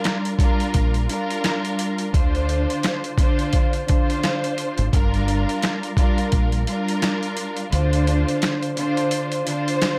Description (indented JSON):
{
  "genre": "hip hop, boom-bap hip-hop",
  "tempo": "86 BPM",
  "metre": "4/4",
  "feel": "swing 57% on 16ths",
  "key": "G minor",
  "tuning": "A4 = 440 Hz",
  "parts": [
    { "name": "warm studio string section", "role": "accompaniment", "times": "0.0-10.0 s", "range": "D3 to C5", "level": "-25 LUFS", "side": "equal", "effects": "cassette tape, high-pass filter, low-pass filter" },
    { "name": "boom bap sampler-style drum kit", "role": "drums", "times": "0.0-10.0 s", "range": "hi-hat, kick drum, snare drum", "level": "-24 LUFS", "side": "equal", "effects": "none" },
    { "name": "deep dub fingered electric bass", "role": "bass", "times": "0.7-8.2 s", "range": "G1 to D2", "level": "-24 LUFS", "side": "equal", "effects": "none" }
  ],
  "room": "light reverb",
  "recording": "vinyl crackle",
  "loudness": "-21 LUFS",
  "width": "mono",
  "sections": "0.0-10.0 A section",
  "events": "kick muted 7.7-10.0",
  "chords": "0.0 Gm7; 2.1 Dm7; 4.9 Gm7; 7.7 Dm7"
}